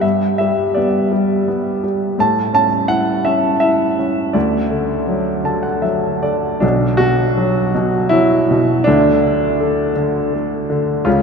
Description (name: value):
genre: classical, lyrical solo piano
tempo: 82 BPM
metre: 3/4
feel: rubato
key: D major, B minor from 6.6 s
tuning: A4 = 440 Hz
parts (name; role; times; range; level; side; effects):
- clear grand piano; solo; 0.0-11.2 s; B1 to A5; -14 LUFS; equal; none
room: wet cathedral reverb, RT60 6.4 s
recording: in a vast, echoing space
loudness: -14 LUFS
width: side -5 dB against mid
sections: 0.0-6.6 A section; 6.6-11.2 B section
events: grand piano fill 5.1-6.6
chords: 0.0 G; 2.2 A; 4.3 D; 6.6 B5; 8.9 D5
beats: | 0.03 0.76 1.47 | 2.18 2.89 3.62 | 4.35 5.08 5.85 | 6.63 7.38 8.13 | 8.87 9.61 10.34 | 11.06